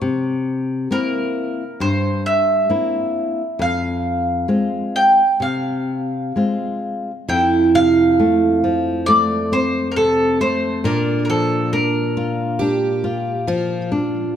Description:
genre	fado-style ballad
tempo	67 BPM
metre	4/4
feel	rubato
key	F harmonic minor, F major from 7.3 s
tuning	A4 = 440 Hz
part	flamenco guitar	accompaniment	0.0-14.3 s	F2 to F4	-20 LUFS	left 2 dB	none
part	mandolin	melody	0.9-13.9 s	A4 to G5	-19 LUFS	equal	none
part	picked plugged-in twelve-string acoustic guitar	second line	7.3-14.4 s	D4 to G4	-19 LUFS	right 4 dB	tape echo
room	moderate concert hall reverb, RT60 2.1 s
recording	none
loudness	-16 LUFS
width	side -9 dB against mid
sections	0.0-7.3 A section; 7.3-14.4 B section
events	none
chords	0.0 C7; 3.6 Fm; 7.3 F; 10.8 Bb

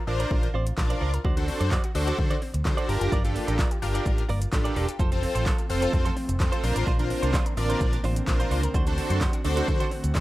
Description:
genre	dance-pop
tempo	128 BPM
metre	4/4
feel	straight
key	unclear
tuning	A4 = 442 Hz
part	analog pluck	arpeggios	0.0-10.0 s	D3 to C6	-38 LUFS	left 2 dB	chorus, sidechain pumping, tape echo
part	direct-recorded clean electric guitar	riff	0.0-10.2 s	D4 to D5	-34 LUFS	right 5 dB	wide subtle chorus
part	big bright polysynth	accompaniment	0.1-10.2 s	C4 to D5	-29 LUFS	equal	chorus, sidechain pumping
part	vintage muted fingered electric bass	bass	0.1-10.2 s	E1 to D3	-27 LUFS	equal	sidechain pumping
part	deep house drum kit	drums	0.2-10.2 s	handclaps, hi-hat, kick drum, shaker, snare drum	-26 LUFS	equal	overdrive
part	airy breathy pad	sustained chords	5.3-10.2 s	D3 to F#4	-35 LUFS	equal	chorus, sidechain pumping
room	little or no reverb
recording	rough home demo mix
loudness	-23 LUFS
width	side -17 dB against mid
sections	0.0-10.2 A section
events	none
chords	0.0 Bbadd9; 1.2 D7; 2.9 Gm7; 5.0 F; 6.6 Bbadd9; 8.7 D7

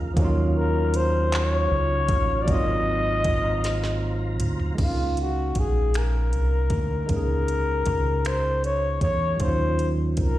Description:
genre	slow six-eight R&B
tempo	52 BPM (dotted quarters)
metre	6/8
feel	straight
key	Db major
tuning	A4 = 440 Hz
part	barky tine electric piano	accompaniment	0.0-10.4 s	F3 to F5	-30 LUFS	right 2 dB	slapback echo
part	tonewheel organ	sustained chords	0.0-4.8 s	Gb3 to Bb5	-37 LUFS	equal	chorus vibrato, slow rotary speaker
part	deep dub fingered electric bass	bass	0.0-10.4 s	Ab1 to Fb2	-24 LUFS	equal	none
part	smooth R&B drum kit	drums	0.2-10.3 s	crash cymbal, finger snaps, handclaps, hi-hat, kick drum, snare drum, toms	-27 LUFS	equal	none
part	breathy flugelhorn	melody	0.6-10.4 s	F4 to Eb5	-26 LUFS	left 2 dB	slapback echo
room	little or no reverb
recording	live gig heard through the venue's PA, recital hall reverb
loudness	-21 LUFS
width	side -14 dB against mid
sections	0.0-4.8 A section; 4.8-10.4 B section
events	drum fill 3.6-4.8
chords	0.2 Ebm9; 2.5 Ab13; 4.8 Db69; 9.4 Ebm9

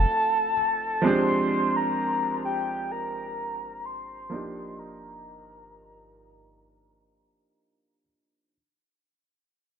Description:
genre	contemporary R&B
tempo	free time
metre	none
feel	none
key	unclear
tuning	A4 = 440 Hz
part	soft octave-layered synth lead	melody	0.0-7.6 s	G5 to C6	-27 LUFS	left 1 dB	chorus, phaser, low-pass filter, tape echo
part	clear baby grand piano	accompaniment	0.0-8.6 s	F3 to G4	-28 LUFS	right 2 dB	low-pass filter
room	light reverb, small room ambience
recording	echo-heavy mix, faint mains hum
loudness	-24 LUFS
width	side -8 dB against mid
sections	0.0-8.5 A section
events	fade-out 0.0-8.5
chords	0.0 F7b9; 1.0 Bb13/F; 4.3 Ebmaj9

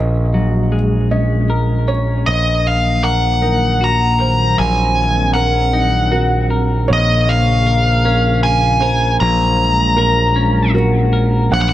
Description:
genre	rock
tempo	78 BPM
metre	3/4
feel	straight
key	unclear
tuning	A4 = 440 Hz
part	felt-muted upright piano	arpeggios	0.0-11.7 s	Bb4 to Gb5	-25 LUFS	right 3 dB	tape echo
part	twelve-string electric guitar	arpeggios	0.0-11.7 s	Bb2 to Bb4	-22 LUFS	left 2 dB	harmonic tremolo, tape echo
part	growling picked electric bass	bass	0.0-11.7 s	Bb1	-16 LUFS	equal	overdrive
part	nasal lead guitar with a parked wah	melody	2.3-11.7 s	Eb5 to Bb5	-16 LUFS	left 1 dB	overdrive, tape echo
part	hollow soft pad	sustained chords	2.8-11.7 s	Db3 to C4	-23 LUFS	right 1 dB	chorus
room	light reverb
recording	none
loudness	-12 LUFS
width	side -13 dB against mid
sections	0.0-2.3 A section; 2.3-11.5 B section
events	none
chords	0.0 Gbadd9/Bb; 2.3 Ebm/Bb; 6.9 Bbm; 9.2 Gbadd9/Bb

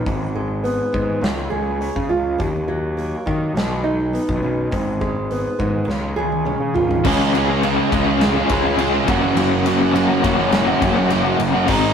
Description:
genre	quiet-loud alternative rock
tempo	103 BPM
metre	4/4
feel	straight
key	unclear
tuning	A4 = 440 Hz
part	fingerpicked acoustic archtop guitar	arpeggios	0.0-7.0 s	Eb2 to Ab4	-22 LUFS	right 2 dB	none
part	fuzz picked electric bass	bass	0.1-11.9 s	Gb1 to Eb3	-24 LUFS	left 1 dB	overdrive
part	big rock drum kit	drums	0.1-11.8 s	crash cymbal, hi-hat, kick drum, ride cymbal, snare drum, toms	-25 LUFS	left 1 dB	none
part	crunchy overdriven guitar	riff	7.0-11.9 s	Gb2 to Ab4	-20 LUFS	right 6 dB	none
part	distorted electric guitar	riff	7.0-11.9 s	Gb2 to Ab4	-22 LUFS	left 1 dB	distortion
part	raw garage guitar	riff	7.0-11.9 s	Gb2 to Ab4	-20 LUFS	left 5 dB	overdrive, tremolo
room	light reverb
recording	rough rehearsal-room recording, tube saturation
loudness	-16 LUFS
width	side -7 dB against mid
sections	0.0-7.1 A section; 7.1-11.9 B section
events	drum fill 5.9-7.1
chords	0.1 Abm; 1.2 Db; 2.4 Ebm; 3.6 Badd9; 4.7 Abm; 5.9 Db; 9.1 Gb

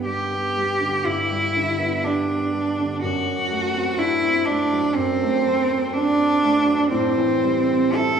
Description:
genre	classical, romantic duo for cello and grand piano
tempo	54-64 BPM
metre	4/4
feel	rubato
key	unclear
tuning	A4 = 440 Hz
part	clear cello	melody	0.0-8.2 s	C4 to A4	-20 LUFS	right 1 dB	none
part	warm concert grand piano	accompaniment	0.0-8.2 s	F#2 to E4	-24 LUFS	right 1 dB	none
room	wet scoring stage reverb, RT60 2.1 s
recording	heard from further back in the room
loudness	-19 LUFS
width	side -7 dB against mid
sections	0.0-8.2 A section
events	none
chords	0.0 G; 3.0 D7/F#; 6.9 Am7

